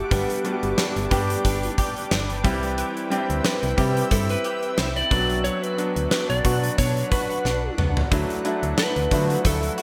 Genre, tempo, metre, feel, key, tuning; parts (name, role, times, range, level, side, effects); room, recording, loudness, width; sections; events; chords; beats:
1980s-style pop; 90 BPM; 4/4; swing 55% on 16ths; A4 = 439 Hz
lightly driven lead guitar; melody; 0.0-9.8 s; G4 to D5; -29 LUFS; equal; shimmer reverb, digital delay
bright concert grand piano; accompaniment; 0.0-9.8 s; F3 to G4; -30 LUFS; equal; shimmer reverb
shimmering ambient pad; sustained chords; 0.0-9.8 s; C4 to E6; -36 LUFS; equal; chorus, built-in reverb, shimmer reverb
direct-recorded clean electric guitar; riff; 0.0-9.8 s; E3 to G4; -34 LUFS; equal; ensemble chorus, shimmer reverb, digital delay
slap-like FM bass; bass; 0.0-9.7 s; G1 to D3; -29 LUFS; equal
gated 80s drum kit; drums; 0.1-9.8 s; hi-hat, kick drum, snare drum, toms; -27 LUFS; equal; gated reverb
moderate lush hall reverb, RT60 2.0 s; bright 1980s-style digital production; -23 LUFS; mono
0.0-9.8 A section
drum fill 7.4-8.1
0.1 G; 2.4 C; 5.1 Bm; 8.1 Dadd9
| 0.11 0.78 1.45 2.11 | 2.78 3.45 4.11 4.78 | 5.45 6.11 6.78 7.45 | 8.11 8.78 9.45